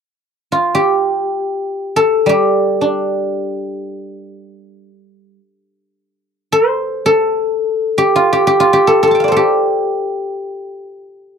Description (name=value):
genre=chinese traditional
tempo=free time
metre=none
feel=none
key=G shang mode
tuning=A4 = 440 Hz
part: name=guzheng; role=solo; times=0.5-11.4 s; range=G3 to C6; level=-13 LUFS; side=equal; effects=none
room=light reverb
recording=dry, close 1970s-style studio recording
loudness=-12 LUFS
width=side -6 dB against mid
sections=0.0-11.4 A section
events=none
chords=none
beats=free time